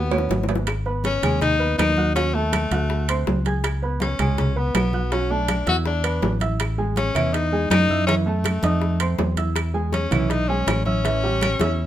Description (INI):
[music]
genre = Afro-Cuban jazz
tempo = 162 BPM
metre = 4/4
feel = straight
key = G# minor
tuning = A4 = 436 Hz
[part]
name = breathy tenor saxophone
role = melody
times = 0.0-11.9 s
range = A3 to F#4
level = -24 LUFS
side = left 3 dB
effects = none
[part]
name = dark upright piano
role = accompaniment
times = 0.0-11.9 s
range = E3 to G#6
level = -27 LUFS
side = right 3 dB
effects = none
[part]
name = fingered electric bass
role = bass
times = 0.0-11.9 s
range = G#1 to F#2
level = -23 LUFS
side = equal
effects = none
[part]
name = claves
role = percussion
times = 0.1-11.6 s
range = none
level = -34 LUFS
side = right 5 dB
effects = none
[part]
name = congas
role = percussion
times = 0.1-11.9 s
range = none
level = -28 LUFS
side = equal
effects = none
[part]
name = timbales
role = percussion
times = 0.1-11.8 s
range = none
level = -29 LUFS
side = right 7 dB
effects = none
[part]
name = bongos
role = percussion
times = 0.2-11.7 s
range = none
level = -30 LUFS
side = left 4 dB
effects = none
[sound]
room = light reverb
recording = minimal, uncompressed stereo recording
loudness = -19 LUFS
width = side -12 dB against mid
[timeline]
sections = 0.7-11.9 A section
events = drum fill 0.0-0.7, 11.6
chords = 0.0 D#7(#5, no3); 0.7 G#m7; 2.2 D#dim; 2.9 D7; 3.6 C#5; 5.1 Bm7; 5.9 E5; 6.6 Amaj7; 8.1 F#m7; 8.8 F7; 9.6 E6; 11.0 A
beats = 0.31 | 0.68 1.05 1.42 1.79 | 2.16 2.53 2.90 3.27 | 3.64 4.01 4.38 4.75 | 5.12 5.49 5.86 6.23 | 6.60 6.97 7.34 7.71 | 8.08 8.45 8.82 9.19 | 9.56 9.93 10.30 10.68 | 11.05 11.42 11.79